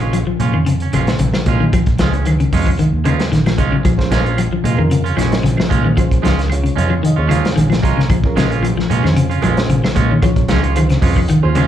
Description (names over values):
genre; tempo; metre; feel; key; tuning
afrobeat; 113 BPM; 4/4; straight; Bb minor; A4 = 440 Hz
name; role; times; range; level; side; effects
clean electric guitar; arpeggios; 0.0-11.7 s; Db3 to F3; -18 LUFS; left 3 dB; wide subtle chorus, slapback echo
clean electric guitar; stabs; 0.0-11.7 s; Ab3 to F4; -22 LUFS; right 8 dB; plate reverb, slapback echo
fingered electric bass; bass; 0.0-11.7 s; Bb1 to Bb2; -17 LUFS; equal; none
crunchy breakbeat drum kit; drums; 0.0-11.7 s; hi-hat, kick drum, snare drum; -19 LUFS; equal; none
claves; percussion; 0.1-11.7 s; none; -31 LUFS; right 7 dB; slapback echo
congas; percussion; 0.1-11.7 s; none; -24 LUFS; right 4 dB; slapback echo
reed electric piano; accompaniment; 3.8-11.7 s; Db4 to Bb5; -25 LUFS; right 3 dB; fast tremolo, plate reverb, slapback echo
room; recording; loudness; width
light reverb; live gig heard through the venue's PA, club reverb; -12 LUFS; side -10 dB against mid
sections
0.0-11.7 A section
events
reed electric piano fill 6.5-8.1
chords
0.0 Bbm7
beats
0.14 0.67 1.20 | 1.73 2.26 2.79 3.32 | 3.85 4.38 4.91 5.44 | 5.97 6.50 7.04 7.57 | 8.10 8.63 9.16 9.70 | 10.23 10.76 11.29